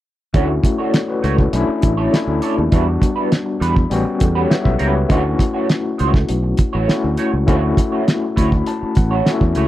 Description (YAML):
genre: lush 1970s-style soul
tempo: 101 BPM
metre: 4/4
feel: straight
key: D major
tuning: A4 = 442 Hz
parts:
  - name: overdriven tine electric piano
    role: accompaniment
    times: 0.3-9.7 s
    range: G3 to B5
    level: -19 LUFS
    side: left 3 dB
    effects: medium tremolo
  - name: electric guitar through a small old amp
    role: riff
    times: 0.3-9.7 s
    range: G3 to C#5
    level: -24 LUFS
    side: right 6 dB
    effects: wah, lush chorus
  - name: fingered electric bass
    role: bass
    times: 0.3-9.7 s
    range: A1 to E2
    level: -19 LUFS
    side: right 1 dB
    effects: none
  - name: cloth-damped thuddy drum kit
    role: drums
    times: 0.3-9.7 s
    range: hi-hat, kick drum, snare drum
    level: -16 LUFS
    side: equal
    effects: none
room: little or no reverb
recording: dry, close 1970s-style studio recording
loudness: -14 LUFS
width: side -14 dB against mid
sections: 0.3-9.7 A section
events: tine electric piano fill 3.3-5.1, 8.1-9.7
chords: 0.3 Dmaj9; 1.5 Bm11 (rootless); 2.7 Em7; 3.9 A13; 5.1 Dmaj9